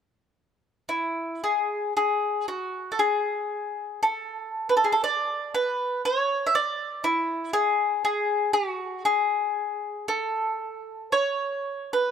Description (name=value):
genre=celtic folk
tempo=59 BPM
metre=3/4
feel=rubato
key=unclear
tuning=A4 = 442 Hz
part: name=bowl-back mandolin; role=solo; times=0.9-12.1 s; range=E4 to E5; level=-24 LUFS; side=equal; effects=none
room=light reverb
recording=close, detailed microphones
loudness=-24 LUFS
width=side -8 dB against mid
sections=0.9-12.1 A section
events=none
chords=none